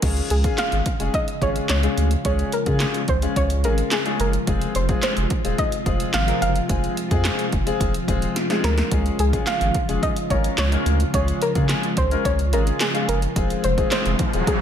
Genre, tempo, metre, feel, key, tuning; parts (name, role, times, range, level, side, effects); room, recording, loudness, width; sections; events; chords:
dance-pop; 108 BPM; 4/4; straight; Db major; A4 = 440 Hz
soft round pluck; melody; 0.0-14.6 s; Ab4 to F5; -26 LUFS; equal; chorus, ping-pong delay
clear grand piano; accompaniment; 0.0-14.6 s; Ab3 to Bb4; -27 LUFS; left 6 dB; lush chorus, sidechain pumping
string machine, cellos; sustained chords; 0.0-14.6 s; C3 to F4; -28 LUFS; equal; ensemble chorus, sidechain pumping
saturated sub bass; bass; 0.0-14.4 s; Eb1 to Db3; -22 LUFS; equal; sidechain pumping
punchy analog drum machine; drums; 0.0-14.6 s; crash cymbal, handclaps, hi-hat, kick drum, snare drum; -24 LUFS; equal
riser; sound effects; 13.9-14.6 s; -28 LUFS; equal
light reverb; -19 LUFS; side -9 dB against mid
0.0-14.6 A section
drum fill 8.4-8.9; riser 13.9-14.6
0.0 Db; 4.5 Fm; 8.9 Db; 13.4 Fm